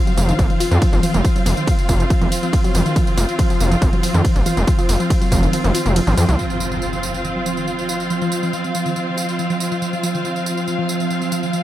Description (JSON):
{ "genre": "driving peak-time techno", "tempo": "140 BPM", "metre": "4/4", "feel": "straight", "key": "unclear", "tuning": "A4 = 440 Hz", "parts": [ { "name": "clear studio string section", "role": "texture", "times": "0.0-11.6 s", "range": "C4 to F5", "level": "-23 LUFS", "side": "equal", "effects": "sidechain pumping" }, { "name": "warbly dusty pluck", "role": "riff", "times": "0.1-11.6 s", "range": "Eb3 to F4", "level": "-23 LUFS", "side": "equal", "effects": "chorus, tube saturation, sidechain pumping, diffuse ambient delay" }, { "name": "techno drum kit", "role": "drums", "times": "0.1-11.6 s", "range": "hi-hat, ride cymbal, tambourine, toms", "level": "-27 LUFS", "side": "equal", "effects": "overdrive" }, { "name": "gritty driven synth bass", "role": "bass", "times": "0.2-6.4 s", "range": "F1 to F2", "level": "-17 LUFS", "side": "equal", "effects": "sidechain pumping" }, { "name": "electronic kick drum", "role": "drums", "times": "0.4-5.4 s", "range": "none", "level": "-17 LUFS", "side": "equal", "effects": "overdrive" }, { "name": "metallic inharmonic drone", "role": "drone", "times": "7.0-11.6 s", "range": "F3", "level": "-25 LUFS", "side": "right 1 dB", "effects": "chorus, built-in reverb, sidechain pumping" }, { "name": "impact", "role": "sound effects", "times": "6.4-8.1 s", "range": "none", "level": "-28 LUFS", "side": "equal", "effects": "none" } ], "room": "light reverb, digital ambience", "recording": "none", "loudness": "-16 LUFS", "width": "side -13 dB against mid", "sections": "0.0-6.4 A section; 6.4-11.6 B section", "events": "drop 0.0-6.4; kick drops out 5.5-6.4; impact 6.4-8.1; filter sweep on synth arpeggio sound 6.4-11.6", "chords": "0.0 F5" }